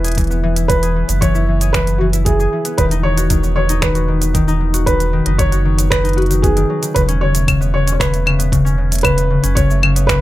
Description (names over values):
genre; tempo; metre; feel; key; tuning
folktronica; 115 BPM; 4/4; straight; E major; A4 = 439 Hz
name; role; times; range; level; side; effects
felt-muted upright piano; melody; 0.0-10.2 s; F#4 to C#5; -20 LUFS; right 1 dB; plate reverb, digital delay
concert harp; arpeggios; 0.0-10.2 s; C#3 to B4; -19 LUFS; left 3 dB; low-pass filter
warm sub bass; bass; 0.0-10.2 s; E1 to F#1; -17 LUFS; equal; tube saturation
organic electronic drum kit; drums; 0.0-10.2 s; claves, finger snaps, hi-hat, shaker; -20 LUFS; equal; none
electronic kick drum; drums; 0.2-10.2 s; none; -18 LUFS; equal; none
room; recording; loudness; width
light reverb; none; -13 LUFS; side -15 dB against mid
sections
0.0-10.2 A section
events
filter sweep on harp 0.0-10.2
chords
0.0 E; 2.8 B/E; 7.0 Aadd9/E